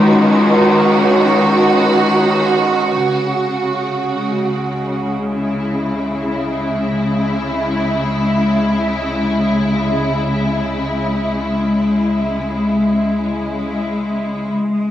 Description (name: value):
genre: ambient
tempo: free time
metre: none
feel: none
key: C# minor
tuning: A4 = 440 Hz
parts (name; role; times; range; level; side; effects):
- rich studio string section; sustained chords; 0.0-14.9 s; C#2 to F#4; -15 LUFS; equal; cassette tape
- kalimba; arpeggios; 0.0-1.2 s; G#3; -18 LUFS; left 2 dB; cassette tape, analog delay
- twinkling granular texture; texture; 0.0-3.0, 14.6-14.9 s; G#5 to C#6; -29 LUFS; right 2 dB; none
- warm sub bass; bass; 3.0-14.9 s; C#2; -35 LUFS; right 1 dB; none
room: wet studio reverb, RT60 0.6 s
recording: home recording on cassette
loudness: -14 LUFS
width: side -11 dB against mid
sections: 0.0-3.0 A section; 3.0-14.9 B section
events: fade-in on sub bass 3.0-14.9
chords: 0.0 G#7(no3)/C#; 3.0 C#m